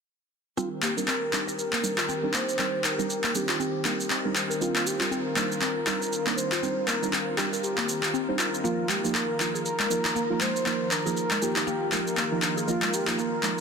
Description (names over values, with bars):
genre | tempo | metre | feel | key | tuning
afro house | 119 BPM | 4/4 | swing 58% on 16ths | C minor | A4 = 440 Hz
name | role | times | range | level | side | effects
expressive synth lead | melody | 0.6-13.6 s | F4 to C5 | -31 LUFS | equal | chorus, tape echo
warm analog pad | sustained chords | 0.6-13.6 s | Eb3 to Bb4 | -34 LUFS | equal | chorus
mallet-like synth pluck | arpeggios | 0.6-13.5 s | Ab3 to Bb4 | -34 LUFS | equal | chorus, phaser, tape echo
deep mellow chord stab | stabs | 0.6-13.6 s | F3 to C5 | -32 LUFS | right 3 dB | chorus
electronic shaker and handclaps | drums | 0.6-13.6 s | none | -27 LUFS | left 1 dB | small room ambience
room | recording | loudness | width
moderate plate reverb, RT60 2.0 s | dense, heavily limited modern master | -24 LUFS | side -5 dB against mid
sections
0.6-13.6 A section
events
filter sweep on synth stab 0.6-13.6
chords
0.6 Cm7; 8.6 Bbsus4